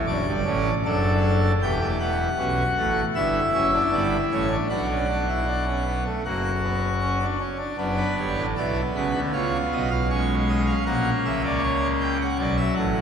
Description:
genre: classical, baroque-style 4-part fugue for pipe organ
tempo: 78 BPM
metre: 4/4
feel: straight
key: B minor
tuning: A4 = 441 Hz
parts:
  - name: pipe organ, full organ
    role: solo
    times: 0.0-13.0 s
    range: E1 to G5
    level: -21 LUFS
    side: equal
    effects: none
room: wet church reverb, RT60 3.2 s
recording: recorded in a church or concert hall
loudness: -21 LUFS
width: side -7 dB against mid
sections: 0.0-1.6 A section; 1.6-7.8 B section; 7.8-13.0 C section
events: none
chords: 0.1 D/F#; 1.6 C#m7b5/E; 4.7 Bm; 6.3 F#; 7.8 Bm/F#; 9.3 C#7; 10.9 F#/A#; 12.4 Bm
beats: 0.09 0.85 | 1.63 2.40 3.16 3.93 | 4.70 5.48 6.25 7.02 | 7.81 8.58 9.34 10.11 | 10.87 11.63 12.38

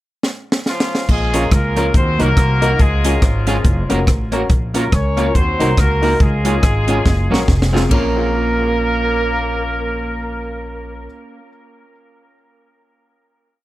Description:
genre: ska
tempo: 141 BPM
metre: 4/4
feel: swing 59% on 8ths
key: Bb minor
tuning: A4 = 440 Hz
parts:
  - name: compact cocktail drum kit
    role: drums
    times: 0.2-8.0 s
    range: crash cymbal, hi-hat, kick drum, ride cymbal, rim click, snare drum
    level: -16 LUFS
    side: equal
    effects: none
  - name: clear horn section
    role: melody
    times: 0.7-11.1 s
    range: F3 to Db5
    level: -21 LUFS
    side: equal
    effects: tape echo
  - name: upright bass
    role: bass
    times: 1.1-11.1 s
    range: F1 to Eb2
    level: -19 LUFS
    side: equal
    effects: none
  - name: clean electric guitar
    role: accompaniment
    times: 1.3-11.4 s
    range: F3 to Bb4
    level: -23 LUFS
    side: right 4 dB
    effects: tape echo
  - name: dark upright piano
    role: stabs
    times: 1.3-11.1 s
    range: C4 to Bb4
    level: -24 LUFS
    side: left 4 dB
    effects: tape echo
room: studio reverb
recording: none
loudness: -14 LUFS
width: side -16 dB against mid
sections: 0.0-1.1 pickup bar; 1.1-7.9 A section; 7.9-11.3 final chord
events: drum fill 0.2-1.1, 7.1-7.9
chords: 0.0 N.C.; 1.1 Bbm; 1.9 Ebm; 2.8 Db; 3.6 Gb; 4.5 Bbm; 5.3 Ebm; 6.2 Db; 7.1 Gb; 7.5 Fm; 7.9 Bbm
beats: 0.23 0.66 | 1.09 1.51 1.94 2.37 | 2.79 3.22 3.64 4.07 | 4.50 4.92 5.35 5.77 | 6.20 6.63 7.05 7.48 | 7.91 8.34 8.76 9.19 | 9.62 10.05 10.47 10.90

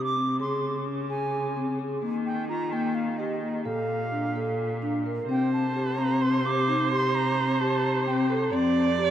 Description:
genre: contemporary instrumental, chamber music in an uneven meter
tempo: 258 BPM (eighths)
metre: 7/8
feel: straight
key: C dorian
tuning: A4 = 440 Hz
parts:
  - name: bright reedy wooden flute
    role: melody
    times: 0.0-8.4 s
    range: Eb5 to D6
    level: -31 LUFS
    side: right 2 dB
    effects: none
  - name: vibraphone with soft mallets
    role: arpeggios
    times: 0.0-9.1 s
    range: Bb3 to Bb4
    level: -27 LUFS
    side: left 1 dB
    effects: none
  - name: clear cello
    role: bass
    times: 0.0-9.1 s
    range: F2 to Eb3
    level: -31 LUFS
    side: equal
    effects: none
  - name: warm viola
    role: second line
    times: 5.3-9.1 s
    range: C5 to D5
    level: -29 LUFS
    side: right 6 dB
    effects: none
room: wet huge ambient reverb, RT60 9.2 s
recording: in a vast, echoing space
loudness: -24 LUFS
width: side -10 dB against mid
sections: 0.0-5.3 A section; 5.3-9.1 B section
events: none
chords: 0.4 Db5; 2.0 Eb; 3.7 Bbmaj7; 5.3 C7(no3); 8.5 Fsus2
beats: 0.16 | 0.40 0.63 0.86 1.10 1.33 1.56 1.80 | 2.03 2.26 2.49 2.73 2.96 3.19 3.42 | 3.65 3.88 4.12 4.35 4.58 4.82 5.05 | 5.29 5.52 5.76 5.99 6.22 6.45 6.68 | 6.91 7.14 7.38 7.61 7.84 8.07 8.30 | 8.53 8.76 8.99

